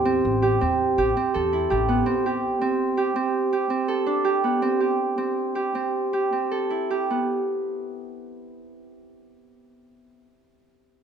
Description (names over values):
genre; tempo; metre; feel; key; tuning
contemporary instrumental, chamber music in an uneven meter; 163 BPM; 7/4; straight; A minor; A4 = 439 Hz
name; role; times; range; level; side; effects
Celtic harp; arpeggios; 0.0-10.2 s; B3 to A4; -22 LUFS; right 2 dB; none
upright bass; bass; 0.0-2.0 s; A1 to E2; -28 LUFS; left 2 dB; none
room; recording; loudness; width
wet recital hall reverb, RT60 1.6 s; minimal, uncompressed stereo recording; -21 LUFS; side -7 dB against mid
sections
0.0-7.3 A section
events
slowing down 4.3-7.3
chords
0.0 Am7; 2.1 D7sus4